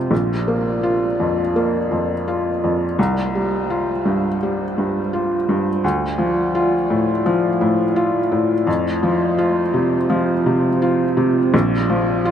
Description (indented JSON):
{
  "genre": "neoclassical piano and strings",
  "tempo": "84 BPM",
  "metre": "4/4",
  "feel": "rubato",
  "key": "F major",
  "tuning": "A4 = 438 Hz",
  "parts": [
    { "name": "felt-muted upright piano", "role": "accompaniment", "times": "0.0-12.3 s", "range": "Bb1 to F4", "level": "-17 LUFS", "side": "equal", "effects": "none" },
    { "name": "warbly tape-like pad", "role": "sustained chords", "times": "0.0-12.3 s", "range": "G3 to D5", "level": "-26 LUFS", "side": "right 2 dB", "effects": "chorus, built-in reverb" }
  ],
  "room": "wet huge ambient reverb, RT60 8.1 s",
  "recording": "in a vast, echoing space",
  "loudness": "-16 LUFS",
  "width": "side -9 dB against mid",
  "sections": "0.0-12.3 A section",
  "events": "none",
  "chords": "0.1 Bb; 3.0 Csus4; 5.8 Dm; 8.7 F; 11.5 Bb"
}